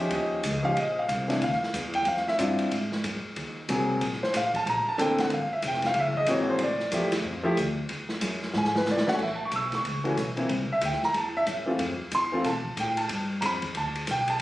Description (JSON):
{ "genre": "jazz, small-group swing and bop", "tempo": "185 BPM", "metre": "4/4", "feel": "swing 62% on 8ths", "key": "unclear", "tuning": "A4 = 443 Hz", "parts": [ { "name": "warm concert grand piano", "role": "accompaniment", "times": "0.0-14.4 s", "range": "D3 to E6", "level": "-26 LUFS", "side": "equal", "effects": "none" }, { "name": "upright bass", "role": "bass", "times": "0.0-14.4 s", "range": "F1 to B2", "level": "-33 LUFS", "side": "equal", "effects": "none" }, { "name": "open jazz drum kit", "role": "drums", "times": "0.1-14.4 s", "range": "crash cymbal, hi-hat, kick drum, ride cymbal, snare drum", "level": "-32 LUFS", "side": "equal", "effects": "none" } ], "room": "moderate club reverb, RT60 0.6 s", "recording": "recorded on a phone in the room, studio reverb", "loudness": "-25 LUFS", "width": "side -16 dB against mid", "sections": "0.0-9.2 A section; 9.2-14.4 A section", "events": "drum fill 8.5-9.2", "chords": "0.1 Eb9; 1.4 Dm9; 2.7 Ab9; 4.0 Bbmaj9; 5.3 Fsus2; 6.0 Gb7#11; 6.6 Fmaj9; 7.9 E; 9.2 A; 10.5 C; 11.8 Fmaj7; 13.1 G9" }